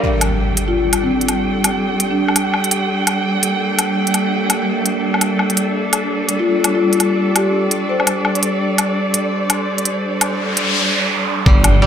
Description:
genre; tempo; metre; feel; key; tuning
half-time drum and bass; 168 BPM; 4/4; swing 59% on 16ths, half-time; G minor; A4 = 435 Hz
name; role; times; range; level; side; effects
rich symphonic cello section; sustained chords; 0.0-11.9 s; G3 to G5; -19 LUFS; right 1 dB; sidechain pumping
koto; arpeggios; 0.0-2.5, 11.5-11.9 s; G3 to Bb3; -22 LUFS; right 1 dB; tape echo
impact and noise sweep; sound effects; 0.0-1.5, 10.3-11.9 s; none; -19 LUFS; equal; none
metallic inharmonic drone; texture; 0.0-10.8 s; G3 to C5; -25 LUFS; equal; chorus, built-in reverb
electronic hi-hat and woodblock; drums; 0.2-11.7 s; none; -18 LUFS; equal; none
marimba with soft mallets; melody; 0.7-2.4, 6.4-8.2 s; C4 to C5; -20 LUFS; left 3 dB; digital delay
dark detuned saw bass; bass; 11.5-11.9 s; G1; -15 LUFS; equal; none
electronic kick drum; drums; 11.5 s; none; -12 LUFS; equal; none
room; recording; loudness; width
moderate digital room reverb, RT60 1.1 s; none; -14 LUFS; side -8 dB against mid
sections
0.0-11.5 A section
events
impact 0.0-1.5, 11.5-11.9; noise sweep 10.3-11.5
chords
0.0 G5

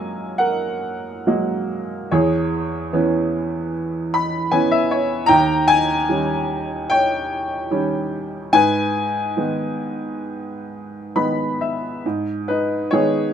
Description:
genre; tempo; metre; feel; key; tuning
classical, lyrical solo piano; 65-79 BPM; 4/4; rubato; G# minor; A4 = 440 Hz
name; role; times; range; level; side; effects
clear upright piano; solo; 0.0-13.3 s; D#2 to B5; -18 LUFS; equal; none
room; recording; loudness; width
moderate studio reverb, RT60 0.8 s; none; -18 LUFS; side -8 dB against mid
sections
0.0-12.0 A section; 12.0-13.3 B section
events
upright piano fill 3.7-5.3, 10.7-12.0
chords
0.0 F#add9; 2.1 C#m7/E; 5.3 D#7; 8.5 G#m

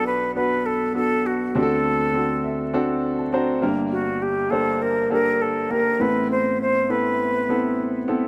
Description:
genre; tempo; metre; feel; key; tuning
pop; 101 BPM; 4/4; straight; D mixolydian; A4 = 439 Hz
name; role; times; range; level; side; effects
reedy concert flute; melody; 0.0-8.1 s; F#4 to C5; -25 LUFS; equal; none
warm upright piano; accompaniment; 0.0-8.3 s; G1 to Bb5; -25 LUFS; equal; none
room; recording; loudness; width
moderate plate reverb, RT60 3.5 s; none; -22 LUFS; mono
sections
0.0-8.3 A section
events
upright piano fill 2.1-3.9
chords
0.0 Bm7; 1.6 D7; 3.6 Gm; 6.0 Amadd9

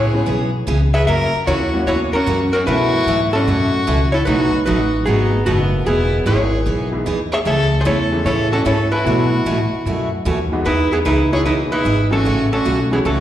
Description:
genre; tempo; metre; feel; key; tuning
country; 150 BPM; 4/4; swing 67% on 8ths; E major; A4 = 440 Hz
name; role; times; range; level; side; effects
archtop guitar, miked and amplified; melody; 0.0-13.2 s; A3 to E5; -18 LUFS; equal; slapback echo
clear fiddle; second line; 0.0-13.2 s; B3 to C#5; -24 LUFS; left 1 dB; slapback echo
upright bass; bass; 0.0-13.2 s; E1 to B2; -20 LUFS; equal; none
clear upright piano; accompaniment; 0.1-4.5, 6.9-13.2 s; B2 to A4; -24 LUFS; left 1 dB; slapback echo
picked steel-string acoustic guitar; accompaniment; 0.3-13.2 s; B2 to G#4; -23 LUFS; right 2 dB; slapback echo
room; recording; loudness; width
moderate club reverb, RT60 0.6 s; live gig heard through the venue's PA, recital hall reverb; -15 LUFS; side -12 dB against mid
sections
0.0-10.7 A section; 10.7-13.2 B section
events
none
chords
0.0 C#m7; 1.1 F#7; 2.7 B7sus4; 4.3 B7; 5.9 Emaj7; 7.5 Amaj7; 9.1 B7sus4; 10.7 Emaj7; 12.3 A6

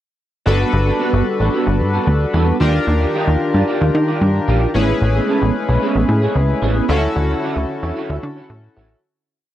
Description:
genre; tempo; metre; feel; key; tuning
funk; 112 BPM; 4/4; straight; G lydian; A4 = 440 Hz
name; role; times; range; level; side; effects
chorused polysynth; accompaniment; 0.5-9.0 s; C#4 to B4; -20 LUFS; left 3 dB; none
warm analog pad; sustained chords; 0.5-9.0 s; D3 to B4; -25 LUFS; left 2 dB; chorus
electric guitar through a small old amp; riff; 0.5-9.0 s; B3 to Eb5; -23 LUFS; right 6 dB; ensemble chorus
plucky analog bass; bass; 0.5-9.0 s; G1 to Eb3; -16 LUFS; equal; none
room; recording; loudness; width
digital ambience; dry, close 1970s-style studio recording; -14 LUFS; side -12 dB against mid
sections
0.5-9.0 verse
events
fade-out 6.9-9.0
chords
0.5 Gmaj9; 2.6 Ebmaj9; 4.7 Amaj9; 6.9 Dmaj9

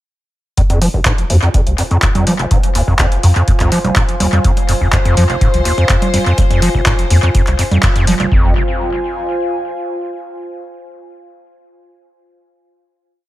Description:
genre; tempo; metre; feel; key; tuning
acid house; 124 BPM; 4/4; straight; F minor pentatonic; A4 = 441 Hz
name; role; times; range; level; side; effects
overdriven acid bass; riff; 0.6-8.5 s; F1 to F3; -16 LUFS; equal; sidechain pumping, tape echo
warm sub bass; bass; 0.6-8.5 s; F1 to F2; -16 LUFS; equal; sidechain pumping
electronic kick drum; drums; 0.6-8.4 s; none; -15 LUFS; equal; overdrive
punchy analog drum machine; drums; 0.6-8.3 s; congas, handclaps, hi-hat; -18 LUFS; right 1 dB; tape echo
warbly tape-like pad; texture; 1.2-10.2 s; F4 to Ab5; -22 LUFS; equal; chorus, built-in reverb, sidechain pumping
warm chamber string section; sustained chords; 4.4-8.3 s; C5; -23 LUFS; left 5 dB; sidechain pumping
room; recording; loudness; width
little or no reverb; echo-heavy mix; -11 LUFS; side -15 dB against mid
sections
0.6-8.3 groove; 8.3-10.3 final chord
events
filter sweep on acid bass 0.6-8.3; band accent 7.8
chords
0.6 Fm

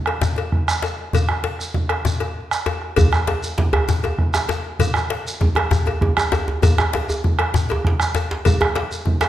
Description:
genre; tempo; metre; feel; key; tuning
west african traditional, West African drum ensemble; 131 BPM (dotted quarters); 12/8; straight; none; none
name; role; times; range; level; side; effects
bombo; percussion; 0.1-9.3 s; none; -20 LUFS; right 2 dB; none
cowbell; percussion; 0.1-9.3 s; none; -28 LUFS; left 6 dB; none
djembe; percussion; 0.2-9.2 s; none; -24 LUFS; left 3 dB; none
shekere; percussion; 0.2-9.3 s; none; -29 LUFS; right 1 dB; none
djembe; percussion; 3.0-9.3 s; none; -22 LUFS; right 1 dB; none
room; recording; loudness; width
wet recital hall reverb, RT60 1.3 s; none; -17 LUFS; side -12 dB against mid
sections
0.0-3.0 A section; 3.0-9.3 B section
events
none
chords
none

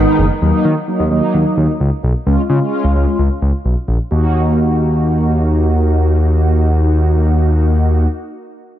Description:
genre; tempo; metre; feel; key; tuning
synth-pop; 130 BPM; 4/4; straight; Eb minor; A4 = 440 Hz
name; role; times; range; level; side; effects
mellow synth brass; accompaniment; 0.0-8.1 s; Eb3 to Gb4; -17 LUFS; right 1 dB; chorus
smooth synth bass; bass; 0.0-8.1 s; Gb1 to Eb3; -13 LUFS; equal; none
room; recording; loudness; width
light reverb, small room ambience; none; -12 LUFS; side -12 dB against mid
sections
0.4-4.1 A section; 4.1-7.8 B section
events
none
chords
0.4 Ebm; 2.3 Db; 4.1 Ebm

